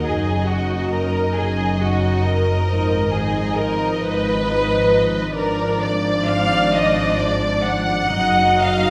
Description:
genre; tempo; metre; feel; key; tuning
classical, slow romantic movement for string orchestra; 45 BPM (dotted quarters); 12/8; rubato; Eb minor; A4 = 440 Hz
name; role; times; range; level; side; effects
warm symphonic violin section; melody; 0.0-8.9 s; D5 to Eb5; -29 LUFS; equal; none
rich symphonic violin section; second line; 0.0-8.9 s; Gb4 to Gb5; -22 LUFS; equal; none
dark studio viola section; accompaniment; 0.0-8.9 s; F3 to Eb4; -27 LUFS; equal; none
warm symphonic cello section; bass; 0.0-8.9 s; Gb2 to Ab2; -27 LUFS; equal; none
warm symphonic double bass section; bass; 0.1-8.9 s; Gb1 to Ab1; -28 LUFS; equal; none
room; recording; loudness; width
wet scoring stage reverb, RT60 1.8 s; none; -19 LUFS; mono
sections
0.0-8.9 A section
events
none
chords
0.1 Ebm/Gb; 2.7 Fm7b5/Ab; 5.4 Bb7/Ab (rootless); 8.1 Ebm/Gb

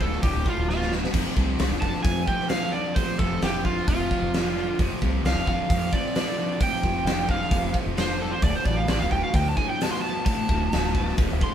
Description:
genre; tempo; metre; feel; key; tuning
blues rock power trio and southern rock; 132 BPM; 4/4; straight; unclear; A4 = 440 Hz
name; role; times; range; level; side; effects
overdriven slide guitar; melody; 0.0-11.5 s; F4 to C6; -28 LUFS; right 2 dB; none
cranked stack guitar; riff; 0.0-11.5 s; D2 to D3; -29 LUFS; equal; overdrive
overdriven fingered electric bass; bass; 0.0-11.4 s; D1 to F2; -28 LUFS; equal; none
big rock drum kit; drums; 0.0-11.5 s; crash cymbal, hi-hat, kick drum, snare drum; -26 LUFS; equal; none
room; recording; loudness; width
moderate stone room reverb, RT60 1.0 s; band playing live in one room; -22 LUFS; side -9 dB against mid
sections
0.0-11.5 A section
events
electric slide guitar solo 0.0-11.5; drum fill 0.7-1.2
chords
0.0 Dm; 1.2 F5; 8.4 D5

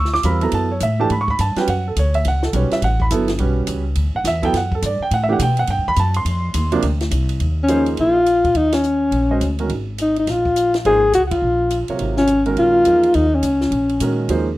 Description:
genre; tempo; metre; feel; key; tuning
modal jazz; 209 BPM; 4/4; swing 62% on 8ths; Eb dorian from 7.4 s; A4 = 440 Hz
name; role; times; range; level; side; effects
warm concert grand piano; accompaniment; 0.0-14.5 s; B#2 to D6; -20 LUFS; right 3 dB; none
upright bass; bass; 0.0-14.6 s; G1 to B2; -21 LUFS; equal; none
compact cocktail drum kit; drums; 0.1-14.4 s; hi-hat, kick drum, ride cymbal, snare drum; -29 LUFS; equal; none
dark alto saxophone; melody; 7.6-14.2 s; Db4 to Ab4; -15 LUFS; left 1 dB; slapback echo
room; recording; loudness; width
light reverb; dry, close 1970s-style studio recording; -15 LUFS; side -17 dB against mid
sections
0.0-7.4 A section; 7.4-14.6 B section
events
band accent 8.7, 11.3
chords
0.0 B9sus4; 2.8 A9sus4; 6.3 A#add9 (rootless); 7.4 Eb9sus4

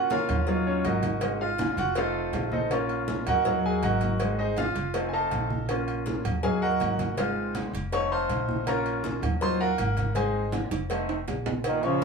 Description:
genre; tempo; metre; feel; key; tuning
latin, salsa; 161 BPM; 4/4; straight; Bb minor; A4 = 441 Hz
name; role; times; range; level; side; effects
bright grand piano; accompaniment; 0.0-12.0 s; Gb3 to Db6; -27 LUFS; equal; none
congas; percussion; 0.1-12.0 s; none; -34 LUFS; right 1 dB; none
cowbell; percussion; 0.1-12.0 s; none; -35 LUFS; left 2 dB; none
upright bass; bass; 0.3-12.0 s; F1 to Eb2; -32 LUFS; equal; none
agogo bells and timbales; percussion; 0.3-12.0 s; none; -36 LUFS; right 8 dB; none
bright trombone section; melody; 11.7-12.0 s; Bb2 to F3; -24 LUFS; right 2 dB; none
room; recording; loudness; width
moderate studio reverb, RT60 0.6 s; band playing live in one room; -24 LUFS; side -5 dB against mid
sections
0.0-11.6 A section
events
grand piano solo 0.0-11.6; drum fill 10.7-11.6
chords
0.5 Ebmadd9; 1.2 Ab; 2.0 F7; 2.7 Bbm; 3.5 Ebmadd9; 4.2 Ab; 4.9 F7; 5.7 Bbm; 6.4 Ebmadd9; 7.2 Ab; 7.9 F7; 8.7 Bbm; 9.4 Ebmadd9; 10.2 Ab; 10.9 F7

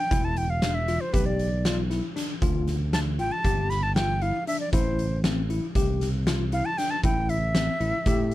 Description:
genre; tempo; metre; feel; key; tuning
progressive instrumental, band music in an uneven meter; 234 BPM (eighths); 9/8; straight; unclear; A4 = 440 Hz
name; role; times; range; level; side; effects
breathy bright concert flute; melody; 0.0-8.3 s; B4 to B5; -28 LUFS; right 1 dB; none
tine electric piano; arpeggios; 0.1-8.3 s; C4 to G4; -31 LUFS; left 5 dB; overdrive, medium tremolo
overdriven fingered electric bass; bass; 0.1-8.3 s; E1 to A2; -27 LUFS; equal; none
oversized low-tuned drum kit; drums; 0.1-8.3 s; hi-hat, kick drum, snare drum; -28 LUFS; equal; none
room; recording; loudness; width
little or no reverb; none; -23 LUFS; side -15 dB against mid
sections
0.0-8.3 A section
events
flute solo 0.0-8.3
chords
0.1 Em7; 2.4 Dm; 3.4 G5; 4.7 Fmaj7/A (rootless)

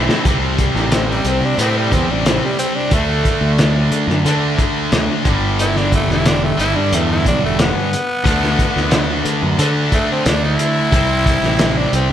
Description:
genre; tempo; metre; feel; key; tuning
classic rock; 90 BPM; 4/4; straight; unclear; A4 = 440 Hz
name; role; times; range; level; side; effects
sludgy distorted guitar; riff; 0.0-12.1 s; G2 to E4; -18 LUFS; equal; overdrive, slapback echo
fuzz fingered electric bass; bass; 0.0-12.1 s; E1 to D3; -19 LUFS; equal; overdrive
cloth-damped thuddy drum kit; drums; 0.1-12.1 s; hi-hat, kick drum, snare drum; -19 LUFS; equal; none
raspy tenor saxophone; melody; 0.9-12.1 s; G3 to E4; -21 LUFS; equal; none
room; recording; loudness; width
moderate recital hall reverb, RT60 1.5 s, small room ambience; big arena sound; -13 LUFS; side -10 dB against mid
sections
0.3-12.1 A section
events
drum fill 0.0; tenor saxophone solo 0.3-12.1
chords
0.3 C5; 2.9 D5; 5.3 G; 8.3 D5; 10.9 C

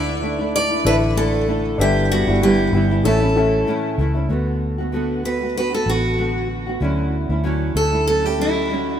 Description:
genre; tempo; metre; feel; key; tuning
acoustic pop; 96 BPM; 4/4; swing 55% on 16ths; unclear; A4 = 440 Hz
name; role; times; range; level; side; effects
picked steel-string acoustic guitar; melody; 0.0-9.0 s; E4 to D5; -21 LUFS; right 1 dB; ping-pong delay
nylon-string guitar; accompaniment; 0.0-9.0 s; G2 to F#4; -22 LUFS; right 1 dB; double-tracked left and right
warm upright piano; accompaniment; 0.0-4.3 s; G3 to E5; -24 LUFS; left 4 dB; none
vintage muted fingered electric bass; bass; 0.0-9.0 s; G1 to D2; -22 LUFS; equal; none
room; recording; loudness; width
moderate lush hall reverb, RT60 2.3 s; rough home demo mix; -17 LUFS; side -9 dB against mid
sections
0.0-4.3 A section; 4.3-9.0 B section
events
none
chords
0.0 Dsus2; 1.8 G6; 3.0 A; 4.3 Bm7/D; 6.8 A6/D

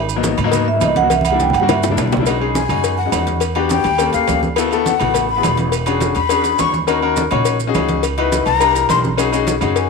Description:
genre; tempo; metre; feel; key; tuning
Afro-Cuban jazz; 208 BPM; 4/4; straight; B major; A4 = 440 Hz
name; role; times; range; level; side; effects
upright bass; bass; 0.0-9.9 s; E1 to G#2; -22 LUFS; right 3 dB; none
agogo bells and timbales; percussion; 0.1-9.9 s; none; -23 LUFS; right 14 dB; none
congas; percussion; 0.1-9.9 s; none; -24 LUFS; right 2 dB; none
maracas; percussion; 0.1-9.9 s; none; -30 LUFS; right 17 dB; none
warm baby grand piano; accompaniment; 0.2-9.9 s; F#3 to C#5; -19 LUFS; left 10 dB; none
cowbell and bongos; percussion; 0.2-9.9 s; none; -24 LUFS; left 10 dB; none
vibraphone with medium mallets; melody; 0.7-1.8 s; D#5 to G5; -17 LUFS; moving between equal and right 8 dB; auto-pan
breathy mellow silver concert flute; second line; 2.6-9.9 s; E#5 to C#6; -19 LUFS; left 8 dB; none
room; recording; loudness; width
moderate echo chamber reverb, RT60 1.3 s, studio reverb; 1960s-style stereo with parts hard left and right; -14 LUFS; side -4 dB against mid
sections
0.0-2.3 A section; 2.3-9.9 A section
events
vibraphone solo 0.0-2.3; drum fill 1.1-2.3; flute solo 2.3-9.9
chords
0.0 G#m9; 1.1 C9; 2.3 B6; 3.4 Em9; 4.0 D#7#11; 4.6 D69; 5.7 E13; 6.9 D#m7; 8.0 C#m11; 8.6 C9; 9.2 B6

